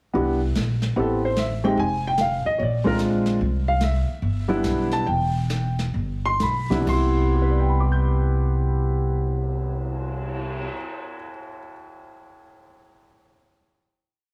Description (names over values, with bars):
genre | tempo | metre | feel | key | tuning
jazz piano trio | 125-148 BPM | 4/4 | swing 65% on 8ths | C major | A4 = 441 Hz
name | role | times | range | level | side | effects
warm grand piano | melody | 0.1-11.7 s | C3 to G6 | -26 LUFS | equal | plate reverb
upright bass | bass | 0.1-10.7 s | E1 to C2 | -26 LUFS | equal | none
jazz brush drum kit | drums | 0.2-10.6 s | brushed snare drum, crash cymbal, cymbal swell, hi-hat, kick drum, snare drum | -35 LUFS | equal | none
room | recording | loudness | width
light reverb | heavily compressed radio sound, small room ambience | -23 LUFS | mono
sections
0.1-6.9 A section; 6.9-10.7 final chord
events
slowing down 3.4-6.9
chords
0.1 Cmaj7; 1.0 Am9; 1.8 Fm; 2.6 Bb9; 3.4 Cmaj7